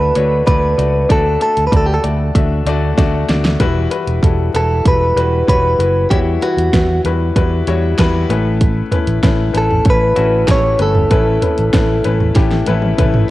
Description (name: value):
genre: piano-driven pop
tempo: 96 BPM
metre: 4/4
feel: straight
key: D major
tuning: A4 = 440 Hz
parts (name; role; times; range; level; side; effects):
- direct-recorded clean electric guitar; melody; 0.0-13.0 s; F#4 to C#5; -16 LUFS; right 1 dB; spring reverb, cassette tape
- clear grand piano; accompaniment; 0.0-13.3 s; A2 to E5; -19 LUFS; left 5 dB; cassette tape
- fingered electric bass; bass; 0.0-13.2 s; E1 to E2; -17 LUFS; right 1 dB; none
- pop drum kit; drums; 0.2-13.3 s; hi-hat, kick drum, snare drum, toms; -15 LUFS; right 1 dB; cassette tape
room: light reverb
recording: home recording on cassette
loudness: -12 LUFS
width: side -16 dB against mid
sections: 0.0-13.3 A section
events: drum fill 3.0-3.6, 12.4-13.3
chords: 0.0 D; 3.6 Emadd9; 8.3 Aadd9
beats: 0.47 | 1.10 1.73 2.35 2.98 | 3.60 4.23 4.86 5.48 | 6.11 6.73 7.36 7.98 | 8.61 9.23 9.86 10.49 | 11.11 11.74 12.36 12.99